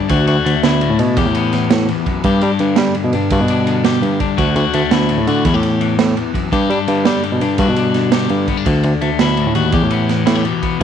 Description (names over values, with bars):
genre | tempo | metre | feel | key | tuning
highlife guitar band | 112 BPM (dotted quarters) | 12/8 | straight | G major | A4 = 440 Hz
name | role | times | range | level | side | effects
electric guitar at the edge of break-up | accompaniment | 0.0-10.8 s | E2 to G4 | -17 LUFS | left 8 dB | none
barky tine electric piano | bass | 0.1-10.8 s | D2 to G3 | -16 LUFS | right 1 dB | overdrive
crunchy breakbeat drum kit | drums | 0.1-10.8 s | kick drum, ride cymbal, snare drum | -20 LUFS | right 6 dB | none
room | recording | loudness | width
light reverb | 1960s-style stereo with parts hard left and right | -13 LUFS | side -8 dB against mid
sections
0.0-10.8 A section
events
none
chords
0.1 D; 1.2 Em; 2.2 G; 4.4 D; 5.4 Em; 6.5 G; 8.7 D; 9.7 Em